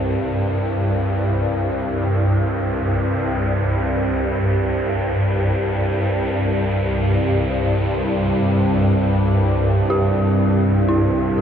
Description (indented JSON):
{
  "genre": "dark ambient drone",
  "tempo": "free time",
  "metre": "none",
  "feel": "none",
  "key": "C major",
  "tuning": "A4 = 440 Hz",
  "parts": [
    { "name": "deep dark ambient pad", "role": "sustained chords", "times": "0.0-11.4 s", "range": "C3 to E5", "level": "-24 LUFS", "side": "equal", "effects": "chorus, built-in reverb" },
    { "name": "swarming drone", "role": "drone", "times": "0.0-11.4 s", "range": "C2 to G2", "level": "-18 LUFS", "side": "equal", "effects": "built-in reverb" },
    { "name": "dark detuned synth bell", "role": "arpeggios", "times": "9.9-11.4 s", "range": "E4 to G4", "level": "-22 LUFS", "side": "right 1 dB", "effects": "chorus" }
  ],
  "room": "wet huge ambient reverb, RT60 7.6 s",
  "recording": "cassette tape",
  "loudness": "-17 LUFS",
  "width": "side -8 dB against mid",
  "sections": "0.0-11.4 A section",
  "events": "fade-in on ambient pad 0.0-11.4",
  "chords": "0.0 C; 4.6 Gsus4/C",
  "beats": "free time"
}